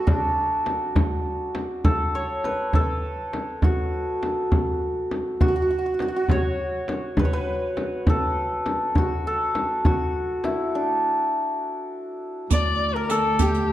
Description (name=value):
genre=Persian modal ensemble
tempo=68 BPM (dotted quarters)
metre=6/8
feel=straight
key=D dastgah mahur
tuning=A4 = 439 Hz
part: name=santur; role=melody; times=0.0-13.7 s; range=D4 to D5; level=-24 LUFS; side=equal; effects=none
part: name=frame drum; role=percussion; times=0.1-10.6 s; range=none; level=-27 LUFS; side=left 2 dB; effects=none
part: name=tombak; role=percussion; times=0.1-13.5 s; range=none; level=-25 LUFS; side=right 1 dB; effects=none
part: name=rich kamancheh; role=second line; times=12.5-13.7 s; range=G4 to D5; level=-25 LUFS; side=left 6 dB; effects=none
part: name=dark cello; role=drone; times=12.5-13.7 s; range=D2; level=-28 LUFS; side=right 2 dB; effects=none
part: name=riq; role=percussion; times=12.5-13.6 s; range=none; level=-30 LUFS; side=right 6 dB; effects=none
room=wet recital hall reverb, RT60 1.5 s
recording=dark, warm production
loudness=-21 LUFS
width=side -13 dB against mid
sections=0.0-12.5 A section; 12.5-13.7 B section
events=break 10.7-12.5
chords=none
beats=| 0.07 0.96 | 1.85 2.74 | 3.62 4.51 | 5.40 6.29 | 7.18 8.07 | 8.96 9.84 | 10.73 11.62 | 12.51 13.39